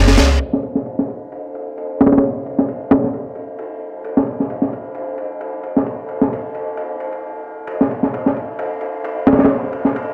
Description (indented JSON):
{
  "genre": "breakbeat",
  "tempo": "132 BPM",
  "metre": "4/4",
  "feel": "swing 55% on 16ths",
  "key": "none",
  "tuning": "none",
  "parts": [
    { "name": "crunchy breakbeat drum kit", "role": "drums", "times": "0.1-10.1 s", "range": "ride cymbal, snare drum", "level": "-20 LUFS", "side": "equal", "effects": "low-pass filter on kick, low-pass filter on cymbals, low-pass filter on snare, low-pass filter on room" }
  ],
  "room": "light reverb",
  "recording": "none",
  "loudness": "-19 LUFS",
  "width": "mono",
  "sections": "0.4-10.1 A section",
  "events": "none",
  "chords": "none"
}